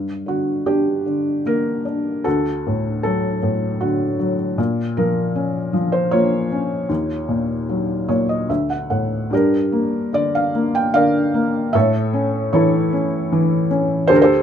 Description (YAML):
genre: classical, lyrical solo piano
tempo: 76 BPM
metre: 3/4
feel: rubato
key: G dorian from 9.3 s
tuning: A4 = 440 Hz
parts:
  - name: felt-muted upright piano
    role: solo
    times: 0.0-14.4 s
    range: D2 to G5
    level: -17 LUFS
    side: equal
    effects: none
room: light reverb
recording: close, detailed microphones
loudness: -17 LUFS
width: side -8 dB against mid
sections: 0.0-9.3 A section; 9.3-14.4 B section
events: felt piano fill 7.7-9.3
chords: 0.0 Gm; 2.3 D; 4.6 Bbm; 6.9 Ebm7; 8.5 D; 9.3 Gm; 11.7 A